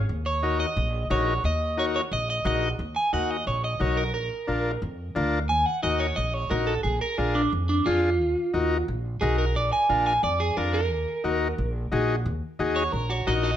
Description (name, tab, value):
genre	latin, cumbia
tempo	177 BPM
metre	4/4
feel	straight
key	Eb harmonic minor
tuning	A4 = 440 Hz
part	upright bass	bass	0.0-13.5 s	Bb1 to F2	-28 LUFS	equal	none
part	electric guitar at the edge of break-up	melody	0.3-13.6 s	D4 to Ab5	-26 LUFS	right 2 dB	spring reverb, plate reverb
part	combo organ	accompaniment	0.4-13.5 s	D4 to Bb4	-28 LUFS	left 4 dB	none
room	light reverb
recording	dark, warm production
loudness	-23 LUFS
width	side -10 dB against mid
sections	0.0-2.8 A section; 2.8-13.6 B section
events	clean electric guitar solo 2.8-13.6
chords	0.1 Ebm; 4.1 Bb; 5.5 Ebm; 6.8 Bb7; 8.2 Ebm; 9.6 Bb7; 10.9 Ebm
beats	| 0.09 0.43 0.77 1.10 | 1.44 1.78 2.12 2.45 | 2.79 3.13 3.47 3.81 | 4.14 4.48 4.82 5.16 | 5.50 5.83 6.17 6.51 | 6.85 7.19 7.53 7.86 | 8.20 8.54 8.88 9.22 | 9.55 9.89 10.23 10.57 | 10.91 11.25 11.59 11.92 | 12.26 12.60 12.94 13.28